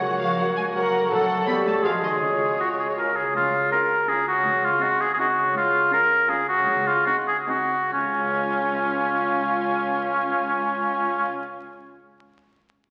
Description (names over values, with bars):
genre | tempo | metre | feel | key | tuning
cinematic, playful, whimsical film cue | 134-168 BPM | 3/4 | straight | Db major | A4 = 441 Hz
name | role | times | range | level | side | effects
warm chamber violin section | melody | 0.0-11.3 s | Db5 to Cb6 | -35 LUFS | equal | none
mellow clarinet | second line | 0.0-3.2 s | F4 to G4 | -37 LUFS | equal | none
mellow hollow large flute ensemble | second line | 0.0-3.2 s | C6 to Db6 | -35 LUFS | equal | none
warm oboe | second line | 0.0-11.3 s | Db4 to Db5 | -24 LUFS | equal | none
dark bassoon | accompaniment | 0.0-3.2 s | G3 to Bb3 | -33 LUFS | equal | none
dark chamber viola section | accompaniment | 0.0-11.3 s | C4 to Bb4 | -34 LUFS | equal | none
concert harp | arpeggios | 0.0-12.1 s | Ab2 to Db5 | -34 LUFS | equal | none
dark studio double bass section | bass | 0.0-11.3 s | Ab1 to Db2 | -45 LUFS | equal | none
warm chamber cello section | bass | 0.0-11.3 s | Db2 to Cb4 | -38 LUFS | equal | none
warm chamber violin section | second line | 0.4-11.3 s | Eb4 to Db5 | -35 LUFS | equal | none
room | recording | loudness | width
wet scoring stage reverb, RT60 1.8 s | very old 78 rpm record, vinyl crackle | -22 LUFS | mono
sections
0.0-3.4 A section; 3.4-7.9 B section; 7.9-10.5 C section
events
slowing down 5.0-7.9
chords
0.0 Db; 1.1 Gbm/A; 1.5 A7; 1.8 Ab7; 2.2 Db; 4.5 Ab7/Db; 7.9 Db